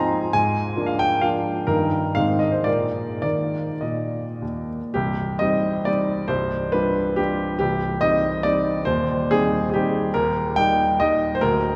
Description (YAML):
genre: classical, romantic triple-time dance for piano with dotted rhythms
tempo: 97-149 BPM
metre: 3/4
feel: rubato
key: Eb major, C minor from 4.9 s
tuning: A4 = 440 Hz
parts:
  - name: clear baby grand piano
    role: solo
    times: 0.0-11.8 s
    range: C1 to Bb5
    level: -22 LUFS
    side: equal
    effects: none
room: wet cathedral reverb, RT60 5.1 s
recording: recorded in a church or concert hall, nothing above 10.5 kHz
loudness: -22 LUFS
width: mono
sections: 0.0-4.9 A section; 4.9-11.8 B section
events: none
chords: 0.3 Bb7/Ab; 1.7 Eb/G; 2.2 Ab; 2.7 Bb7; 3.2 Eb5; 4.9 Cm; 6.3 G7/C; 7.6 Cm; 8.9 Cm/Eb; 10.1 Eb